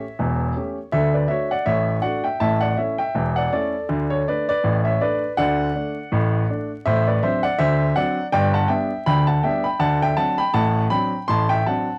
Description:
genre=ragtime piano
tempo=81 BPM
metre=2/4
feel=swing 57% on 16ths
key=D major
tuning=A4 = 440 Hz
part: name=warm baby grand piano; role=solo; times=0.0-12.0 s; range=E1 to C6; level=-21 LUFS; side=equal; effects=none
room=light reverb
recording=home recording on cassette, vinyl crackle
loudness=-21 LUFS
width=mono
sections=0.0-12.0 A section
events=none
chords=0.0 A7; 0.9 D; 2.4 A; 3.9 D; 6.9 D7/A; 8.3 G; 9.8 D7

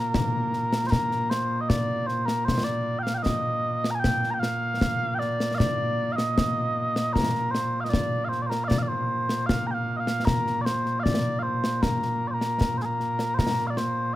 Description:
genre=scottish traditional, Scottish pipe music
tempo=77 BPM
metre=2/4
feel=straight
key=Bb major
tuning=A4 = 442 Hz
part: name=mellow small bagpipes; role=melody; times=0.0-14.2 s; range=Bb2 to Bb5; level=-25 LUFS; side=equal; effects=none
part: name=concert snare drum and concert bass drum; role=drums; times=0.1-14.0 s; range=none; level=-27 LUFS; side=left 1 dB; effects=none
room=light reverb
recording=close, detailed microphones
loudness=-23 LUFS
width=side -15 dB against mid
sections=0.9-13.4 A section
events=none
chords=none

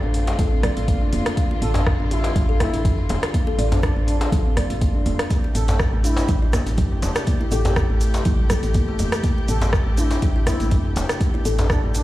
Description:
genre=afro house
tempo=122 BPM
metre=4/4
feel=swing 54% on 16ths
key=A minor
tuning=A4 = 438 Hz
part: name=dark chamber string section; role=sustained chords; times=0.0-12.0 s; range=C3 to G4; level=-31 LUFS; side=left 1 dB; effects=sidechain pumping
part: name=kalimba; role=arpeggios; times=0.0-11.9 s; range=E3 to D5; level=-29 LUFS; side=left 2 dB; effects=sidechain pumping
part: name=woody FM bass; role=bass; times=0.0-12.0 s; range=E1 to A1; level=-23 LUFS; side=equal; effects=sidechain pumping
part: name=afro-pop drum kit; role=drums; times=0.1-12.0 s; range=hi-hat, rim click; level=-29 LUFS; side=equal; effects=studio reverb
part: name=djembe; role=percussion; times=0.1-12.0 s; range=none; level=-28 LUFS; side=left 1 dB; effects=none
part: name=electronic kick drum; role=drums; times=0.4-11.8 s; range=none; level=-21 LUFS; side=equal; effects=studio reverb
part: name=congas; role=percussion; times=0.4-11.8 s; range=none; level=-30 LUFS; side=right 2 dB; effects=none
part: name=expressive portamento lead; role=melody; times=1.6-12.0 s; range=D4 to A4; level=-31 LUFS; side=left 1 dB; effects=lush chorus, dub echo
part: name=egg shaker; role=percussion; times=5.3-12.0 s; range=none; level=-37 LUFS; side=right 4 dB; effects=none
room=studio ambience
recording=played on a big sound system in a bare room, stone room reverb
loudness=-18 LUFS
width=side -16 dB against mid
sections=0.0-12.0 A section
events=none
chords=0.0 Dm; 5.3 Am7

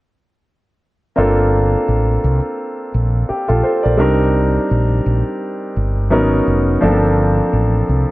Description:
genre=R&B, neo-soul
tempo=85 BPM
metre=4/4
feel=swing 55% on 16ths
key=G minor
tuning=A4 = 440 Hz
part: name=warm baby grand piano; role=accompaniment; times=1.2-8.1 s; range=F3 to D5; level=-16 LUFS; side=equal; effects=none
part: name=mellow fretless electric bass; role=bass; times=1.2-8.0 s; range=F1 to C2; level=-16 LUFS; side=equal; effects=ensemble chorus
room=light reverb, studio reverb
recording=worn, warbling old tape, cassette tape, warbly pitch drift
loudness=-13 LUFS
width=side -19 dB against mid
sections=1.2-8.1 A section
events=none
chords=1.2 Gm11; 4.0 Cm9; 6.1 Abm11; 6.8 Gm11

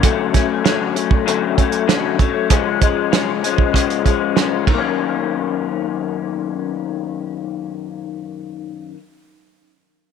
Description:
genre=indie pop, bedroom pop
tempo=97 BPM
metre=4/4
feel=straight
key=F# major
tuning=A4 = 440 Hz
part: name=electric guitar through a small old amp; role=accompaniment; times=0.0-9.0 s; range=F#2 to C#4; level=-19 LUFS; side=left 11 dB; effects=ensemble chorus, warbly pitch drift
part: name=cloth-damped thuddy drum kit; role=drums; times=0.0-4.8 s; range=hi-hat, kick drum, ride cymbal, snare drum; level=-17 LUFS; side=right 4 dB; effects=none
room=light reverb, studio reverb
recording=1960s-style stereo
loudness=-16 LUFS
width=side -7 dB against mid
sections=0.0-5.0 A section; 5.0-7.5 B section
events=none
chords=0.0 Dmaj7; 2.5 C#; 4.7 F#6

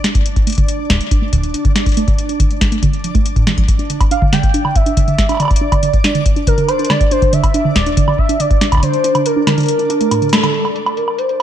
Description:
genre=IDM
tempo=140 BPM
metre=4/4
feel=straight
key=unclear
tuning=A4 = 440 Hz
part: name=warbly dusty pluck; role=arpeggios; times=0.0-10.5 s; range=A2 to D4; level=-19 LUFS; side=right 3 dB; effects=chorus
part: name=booming analog drum machine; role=drums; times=0.0-11.4 s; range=hi-hat, snare drum, woodblock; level=-19 LUFS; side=equal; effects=low-pass filter on hats, low-pass filter on snare, low-pass filter on cymbals, low-pass filter on perc, ping-pong delay
part: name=backwards swelling texture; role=texture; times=0.0-11.4 s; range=D4 to D5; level=-25 LUFS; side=right 2 dB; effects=built-in reverb, sidechain pumping
part: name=electronic kick drum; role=drums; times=0.1-8.8 s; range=none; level=-14 LUFS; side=equal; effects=none
part: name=warm velvety synth lead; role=melody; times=4.1-11.4 s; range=A4 to G5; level=-17 LUFS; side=equal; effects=chorus, digital delay
room=light reverb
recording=dark, warm production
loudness=-12 LUFS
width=side -10 dB against mid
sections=0.0-10.5 A section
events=filter sweep on synth arpeggio sound 0.0-10.5; kick drops out 8.8-10.5; band accent 10.3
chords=0.0 D5; 3.7 N.C.; 7.1 C7sus2 (rootless); 10.5 N.C.

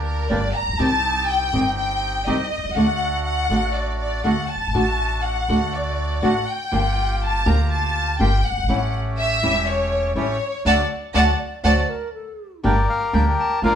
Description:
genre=tango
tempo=122 BPM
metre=4/4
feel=rubato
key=unclear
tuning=A4 = 440 Hz
part: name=rich studio violin section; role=second line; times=0.0-11.8 s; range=Bb4 to Bb5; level=-22 LUFS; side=left 2 dB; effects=none
part: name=bandoneon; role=stabs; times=0.0-13.8 s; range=A3 to G4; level=-30 LUFS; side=right 2 dB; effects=none
part: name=upright bass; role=bass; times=0.0-13.8 s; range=E1 to D2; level=-24 LUFS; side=equal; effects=none
part: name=nylon-string guitar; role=accompaniment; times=0.3-13.7 s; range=C3 to G4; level=-23 LUFS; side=equal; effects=none
part: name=mellow hollow silver concert flute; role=second line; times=11.1-12.6 s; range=A4 to F#5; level=-29 LUFS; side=right 4 dB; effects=none
part: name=bandoneon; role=melody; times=12.7-13.8 s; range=G4 to A5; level=-20 LUFS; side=left 3 dB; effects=none
room=moderate stone room reverb, RT60 1.1 s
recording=band playing live in one room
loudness=-18 LUFS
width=side -9 dB against mid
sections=0.0-12.6 A section; 12.6-13.8 B section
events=violin section solo 0.0-12.6; band accent 10.7-12.6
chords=0.0 Gm; 0.8 Cm; 2.8 D; 6.7 Gm7; 8.7 A7; 10.7 D; 12.6 Gm

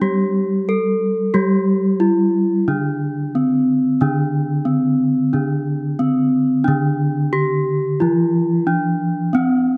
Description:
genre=gamelan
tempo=90 BPM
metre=4/4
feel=straight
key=D slendro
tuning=A4 = 440 Hz
part: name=gamelan-type bronze metallophone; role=melody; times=0.0-9.8 s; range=C4-40c to A4+20c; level=-20 LUFS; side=equal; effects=none
part: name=gamelan-type bronze metallophone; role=accompaniment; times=0.0-9.8 s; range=D3 to C4-40c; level=-22 LUFS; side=equal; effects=none
room=moderate plate reverb, RT60 2.7 s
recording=dark, warm production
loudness=-18 LUFS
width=mono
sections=0.0-6.7 A section; 6.7-9.8 A section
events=none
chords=none

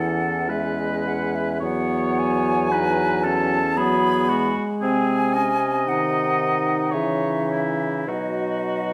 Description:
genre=classical, slow romantic movement for wind quintet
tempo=52-58 BPM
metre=3/4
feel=rubato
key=unclear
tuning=A4 = 440 Hz
part: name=mellow hollow silver concert flute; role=melody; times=0.0-8.9 s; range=D#5 to B5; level=-28 LUFS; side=equal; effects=none
part: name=warm oboe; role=second line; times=0.0-8.9 s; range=E4 to D#5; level=-29 LUFS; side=equal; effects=none
part: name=clear French horn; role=accompaniment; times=0.0-8.9 s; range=D#3 to G#3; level=-29 LUFS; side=equal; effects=none
part: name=clear clarinet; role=accompaniment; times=0.0-8.9 s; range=B3 to D#4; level=-30 LUFS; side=equal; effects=none
part: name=mellow bassoon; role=bass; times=0.0-8.9 s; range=E2 to C#3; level=-28 LUFS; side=equal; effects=none
room=moderate recital hall reverb, RT60 1.3 s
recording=none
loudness=-22 LUFS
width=mono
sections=0.0-8.9 A section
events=none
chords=0.0 E; 1.6 B/E; 4.8 G#7/B#; 7.0 C#m; 8.1 B

